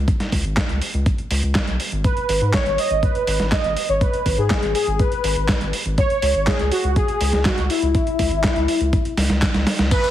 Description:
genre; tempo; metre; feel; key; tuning
italo disco; 122 BPM; 4/4; straight; C# minor; A4 = 440 Hz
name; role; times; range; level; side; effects
round analog bass; bass; 0.0-9.9 s; G#1 to G#2; -22 LUFS; equal; tube saturation
dusty soul sampler-style drum kit; drums; 0.1-10.1 s; crash cymbal, handclaps, hi-hat, snare drum, tambourine; -24 LUFS; right 1 dB; overdrive, studio reverb
electronic kick drum; drums; 0.1-10.0 s; none; -21 LUFS; equal; overdrive, studio reverb
analog synth brass; melody; 2.0-10.1 s; E4 to D#5; -21 LUFS; left 1 dB; chorus, tape echo
room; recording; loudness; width
moderate digital room reverb, RT60 1.2 s; heavily compressed radio sound, multiband compression, vinyl crackle; -17 LUFS; side -12 dB against mid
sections
0.0-9.9 A section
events
drum fill 9.2-9.9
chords
0.0 C#5; 2.0 G#m; 6.0 C#m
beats
| 0.08 0.57 1.06 1.55 | 2.04 2.54 3.03 3.52 | 4.01 4.50 5.00 5.49 | 5.98 6.47 6.96 7.46 | 7.95 8.44 8.93 9.42 | 9.91

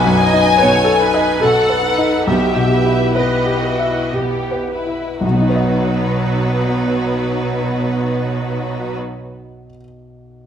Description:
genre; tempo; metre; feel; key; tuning
classical, romantic movement for piano and orchestra; 52-77 BPM; 3/4; rubato; B major; A4 = 440 Hz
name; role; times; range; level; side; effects
clear baby grand piano; melody; 0.0-10.5 s; B1 to E5; -17 LUFS; left 1 dB; none
rich studio violin section; melody; 0.0-9.0 s; B4 to G#5; -21 LUFS; left 3 dB; none
rich studio violin section; second line; 0.0-9.0 s; B3 to B4; -24 LUFS; left 2 dB; none
rich studio viola section; accompaniment; 0.0-9.0 s; F#3 to D#5; -21 LUFS; right 3 dB; none
rich studio cello section; bass; 0.0-9.0 s; B2; -23 LUFS; right 3 dB; none
room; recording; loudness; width
moderate recital hall reverb, RT60 1.3 s; none; -14 LUFS; side -8 dB against mid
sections
0.0-5.2 A section; 5.2-8.2 B section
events
slowing down 0.0-5.2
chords
0.0 B7; 2.3 Em/B; 5.2 B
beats
0.60 1.42 | 2.27 3.16 4.15 | 5.23 6.22 7.20

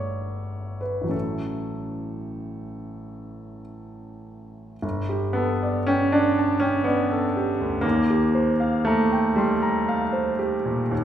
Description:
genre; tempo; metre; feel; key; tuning
classical, impressionist solo piano; 47-63 BPM; 3/4; rubato; unclear; A4 = 442 Hz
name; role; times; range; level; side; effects
clear grand piano; solo; 0.0-11.0 s; G1 to B#5; -22 LUFS; equal; none
room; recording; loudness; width
wet recital hall reverb, RT60 1.5 s; heard from further back in the room; -21 LUFS; side -10 dB against mid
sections
0.0-4.8 A section; 4.8-11.0 B section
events
none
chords
0.0 G9; 1.1 A6; 4.8 Gadd9; 7.8 D#69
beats
| 1.14 2.38 3.62 | 4.83 5.89 6.86 | 7.84 8.86 9.88 | 10.92

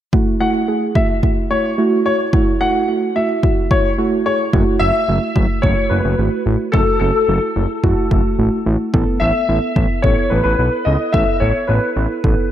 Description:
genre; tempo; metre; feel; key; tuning
synth-pop; 109 BPM; 4/4; straight; unclear; A4 = 441 Hz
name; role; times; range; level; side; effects
muted felt-like synth keys; accompaniment; 0.1-12.5 s; A3 to A4; -19 LUFS; right 3 dB; chorus
electronic kick drum; drums; 0.1-12.4 s; none; -17 LUFS; equal; none
clear baby grand piano; second line; 0.4-4.3 s; C#5 to F#5; -20 LUFS; left 3 dB; digital delay
fat analog bass; bass; 4.5-12.3 s; F#1 to C#2; -18 LUFS; equal; none
warm concert grand piano; melody; 4.8-12.5 s; A4 to E5; -19 LUFS; left 2 dB; ensemble chorus, digital delay
room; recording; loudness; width
moderate lush hall reverb, RT60 2.2 s; bright 1980s-style digital production; -14 LUFS; side -11 dB against mid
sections
0.1-4.5 A section; 4.5-12.5 B section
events
none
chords
0.1 F#m7; 8.9 Asus2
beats
| 0.13 0.68 1.23 1.78 | 2.33 2.88 3.43 3.98 | 4.53 5.08 5.63 6.18 | 6.74 7.29 7.84 8.39 | 8.94 9.49 10.04 10.59 | 11.14 11.69 12.24

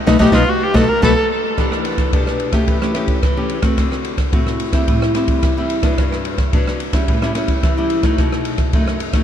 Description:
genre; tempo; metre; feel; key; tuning
samba and choro; 109 BPM; 4/4; straight; E minor; A4 = 440 Hz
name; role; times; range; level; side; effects
cavaquinho; accompaniment; 0.1-1.1 s; A4 to D#5; -25 LUFS; right 4 dB; none
nylon-string guitar; accompaniment; 0.1-9.2 s; F#2 to G4; -19 LUFS; left 1 dB; none
modern bright fingered electric bass; bass; 0.1-1.1 s; B1; -19 LUFS; equal; none
open jazz drum kit; drums; 0.1-9.2 s; crash cymbal, kick drum, ride cymbal, rim click, snare drum; -17 LUFS; equal; none
rich viola; melody; 0.2-1.2 s; F4 to A#4; -20 LUFS; left 1 dB; tape echo
room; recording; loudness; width
moderate huge ambient reverb, RT60 4.7 s; dreamy mix soaked in reverb; -14 LUFS; side -10 dB against mid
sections
0.0-1.6 A section; 1.6-9.2 B section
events
band accent 0.0-1.6; viola solo 0.0-1.6; drum fill 1.0-1.6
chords
0.0 B7; 1.6 Em7; 2.7 A7/E; 3.8 D7; 4.9 Am7; 6.0 Gmaj7; 7.1 A7; 8.2 B7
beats
0.48 1.03 | 1.58 2.13 2.68 3.23 | 3.78 4.33 4.88 5.43 | 5.98 6.53 7.08 7.63 | 8.18 8.73

